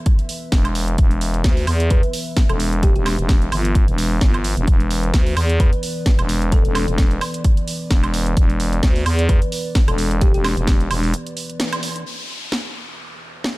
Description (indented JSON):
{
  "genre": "bass house",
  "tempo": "130 BPM",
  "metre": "4/4",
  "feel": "swing 55% on 16ths",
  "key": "unclear",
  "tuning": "A4 = 440 Hz",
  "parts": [
    { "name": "dark analog pad", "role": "sustained chords", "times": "0.0-13.6 s", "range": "E3 to E5", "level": "-30 LUFS", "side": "equal", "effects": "chorus, sidechain pumping" },
    { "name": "electronic kick drum", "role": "drums", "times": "0.1-10.8 s", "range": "none", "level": "-15 LUFS", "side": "equal", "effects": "none" },
    { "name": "house drum kit", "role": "drums", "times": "0.1-13.5 s", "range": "hi-hat, snare drum, woodblock", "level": "-25 LUFS", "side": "right 1 dB", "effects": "none" },
    { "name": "growling FM bass", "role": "bass", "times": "0.5-11.1 s", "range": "E1 to E2", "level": "-19 LUFS", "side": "equal", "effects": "tube saturation, sidechain pumping" },
    { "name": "thumb-piano-like synth pluck", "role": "melody", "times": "1.9-10.4 s", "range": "G4 to B4", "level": "-29 LUFS", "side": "left 1 dB", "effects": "analog chorus, dub echo" },
    { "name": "downlifter", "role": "sound effects", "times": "12.1-13.6 s", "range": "none", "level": "-30 LUFS", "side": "left 2 dB", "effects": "none" }
  ],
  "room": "little or no reverb",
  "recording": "none",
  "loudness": "-16 LUFS",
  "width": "side -20 dB against mid",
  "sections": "0.0-12.1 A section; 12.1-13.6 B section",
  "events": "break 11.1-12.1; band accent 11.6; filter sweep on analog synth pad 12.1-13.6",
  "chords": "0.0 E5",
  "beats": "0.06 0.52 | 0.98 1.45 1.91 2.37 | 2.83 3.29 3.75 4.21 | 4.68 5.14 5.60 6.06 | 6.52 6.98 7.45 7.91 | 8.37 8.83 9.29 9.75 | 10.21 10.68 11.14 11.60 | 12.06 12.52 12.98 13.45"
}